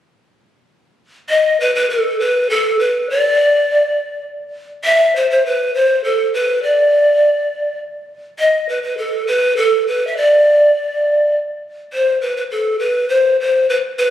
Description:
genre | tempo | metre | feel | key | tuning
andean folk | 68 BPM (dotted quarters) | 6/8 | straight | unclear | A4 = 440 Hz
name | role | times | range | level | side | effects
breathy hollow large pan pipes | melody | 1.3-14.1 s | A4 to E5 | -13 LUFS | equal | none
room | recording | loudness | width
moderate concert hall reverb, RT60 2.0 s | recorded on a phone in the room, club ambience, compression | -13 LUFS | side -11 dB against mid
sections
1.3-14.1 A section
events
none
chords
none

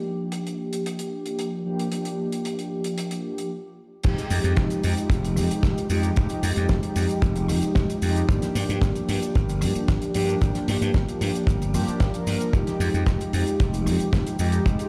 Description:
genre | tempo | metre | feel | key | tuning
nu-disco, nu disco | 113 BPM | 4/4 | straight | F dorian | A4 = 440 Hz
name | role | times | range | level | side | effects
mellow synth brass | accompaniment | 0.0-14.9 s | F3 to Bb4 | -29 LUFS | equal | chorus, sidechain pumping, delay
damped 70s drum kit | drums | 0.3-14.9 s | cabasa, crash cymbal, hi-hat, rim click, snare drum | -36 LUFS | equal | none
slap bass | bass | 4.0-14.8 s | F1 to G2 | -27 LUFS | equal | sidechain pumping
kick drum | drums | 4.0-14.8 s | none | -25 LUFS | equal | none
room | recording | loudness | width
moderate echo chamber reverb, RT60 2.2 s | played on a big sound system in a bare room, stone room reverb | -24 LUFS | mono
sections
0.0-4.0 A section; 4.0-14.9 B section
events
filter sweep on analog polysynth 0.0-4.0; stop 3.5-4.0; drop 4.0-14.9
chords
0.0 Gm7; 4.0 Fm9; 8.3 Gm7; 12.5 Fm9

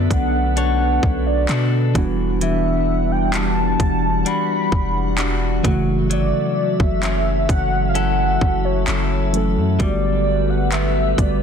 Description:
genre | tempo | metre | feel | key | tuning
contemporary R&B | 65 BPM | 4/4 | straight | unclear | A4 = 439 Hz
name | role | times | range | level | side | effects
warm velvety synth lead | melody | 0.0-11.4 s | C#5 to B5 | -23 LUFS | equal | chorus
muted felt-like synth keys | accompaniment | 0.0-11.4 s | C#3 to A4 | -25 LUFS | right 3 dB | chorus
glassy FM pad | sustained chords | 0.0-11.4 s | E3 to F#5 | -24 LUFS | left 2 dB | ensemble chorus, built-in reverb
direct-recorded clean electric guitar | arpeggios | 0.0-11.4 s | E3 to C#5 | -27 LUFS | left 9 dB | ping-pong delay
long sustained 808-style bass | bass | 0.0-11.4 s | E1 to B2 | -21 LUFS | equal | none
trap drum kit | drums | 0.1-11.4 s | handclaps, hi-hat, kick drum | -22 LUFS | equal | soft clipping on snare
room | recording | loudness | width
digital ambience | dense, heavily limited modern master | -16 LUFS | side -7 dB against mid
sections
0.0-11.4 A section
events
none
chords
0.0 Bm9; 2.0 Em9; 5.6 F#m7; 9.8 Gmaj9

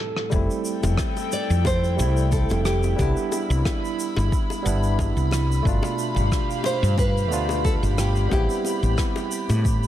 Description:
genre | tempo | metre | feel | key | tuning
sunset chillout | 90 BPM | 4/4 | swing 54% on 16ths | unclear | A4 = 440 Hz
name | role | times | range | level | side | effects
nylon-string guitar | melody | 0.0-9.6 s | G4 to D5 | -29 LUFS | right 1 dB | ping-pong delay
barky tine electric piano | accompaniment | 0.0-9.9 s | B2 to F4 | -28 LUFS | moving between left 3 dB and right 3 dB | overdrive, auto-pan, tape echo
rim click and shaker | drums | 0.2-9.9 s | none | -33 LUFS | left 1 dB | low-pass filter on snare, low-pass filter on perc, low-pass filter on room
airy breathy pad | sustained chords | 0.3-9.9 s | E4 to B5 | -31 LUFS | equal | chorus
woody fretless electric bass | bass | 0.3-9.9 s | F1 to A2 | -22 LUFS | equal | none
electronic kick drum | drums | 0.3-9.8 s | none | -24 LUFS | equal | none
bongos | percussion | 0.3-9.6 s | none | -35 LUFS | left 4 dB | none
room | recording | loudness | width
light reverb, studio ambience | dark, warm production | -20 LUFS | side -12 dB against mid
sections
0.3-9.9 A section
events
break 0.0-0.3; drum fill 0.0-0.3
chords
0.3 Fmaj9; 3.0 Cmaj7; 5.7 G7; 8.3 Am9

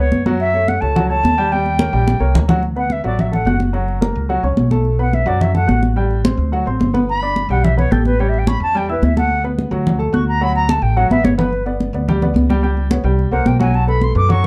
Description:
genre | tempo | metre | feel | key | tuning
Afro-Cuban jazz | 216 BPM | 4/4 | straight | D major | A4 = 439 Hz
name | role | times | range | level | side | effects
reedy concert flute | melody | 0.0-14.5 s | A4 to D6 | -22 LUFS | equal | none
warm upright piano | accompaniment | 0.0-14.5 s | F#3 to G6 | -24 LUFS | equal | none
upright bass | bass | 0.0-14.5 s | F#1 to F#2 | -20 LUFS | equal | none
congas | percussion | 0.1-14.5 s | none | -22 LUFS | equal | none
room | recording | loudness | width
moderate club reverb, RT60 0.7 s | dark, warm production | -16 LUFS | mono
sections
0.0-2.6 A section; 2.6-11.5 B section; 11.5-14.5 B section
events
drum fill 2.1-2.6, 11.1-11.5; flute solo 2.6-14.5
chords
0.4 F#m7; 1.5 Eb7; 2.6 D6; 3.7 F#; 4.9 B5; 6.0 Am7; 6.5 D7; 7.1 Gadd9; 8.2 A7; 9.3 D6; 11.5 G; 12.6 Gadd11; 13.2 C5; 13.7 Bsus2

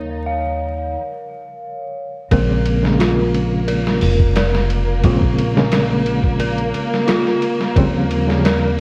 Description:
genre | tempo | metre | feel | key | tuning
trip hop | 88 BPM | 4/4 | straight | Bb dorian | A4 = 444 Hz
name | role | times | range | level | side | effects
reed electric piano | accompaniment | 0.0-8.8 s | Db3 to Db4 | -22 LUFS | equal | fast tremolo, vintage 12-bit sampler grit
muted studio violin section | sustained chords | 0.0-8.8 s | Bb3 to Eb4 | -28 LUFS | equal | none
dark detuned synth bell | arpeggios | 0.0-8.8 s | F4 to F5 | -25 LUFS | equal | chorus, phaser, tape echo
upright bass | bass | 0.0-8.8 s | F1 to Eb2 | -22 LUFS | equal | none
trip hop sampler-style drum kit | drums | 2.3-8.6 s | hi-hat, kick drum, ride cymbal, snare drum | -23 LUFS | equal | vintage 12-bit sampler grit
room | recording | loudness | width
light reverb, digital ambience | worn, warbling old tape, cassette tape, vinyl crackle, warbly pitch drift | -17 LUFS | mono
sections
0.0-2.3 A section; 2.3-8.8 B section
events
break 0.9-2.3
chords
0.0 Eb9; 2.3 Bbm9; 7.8 Eb13

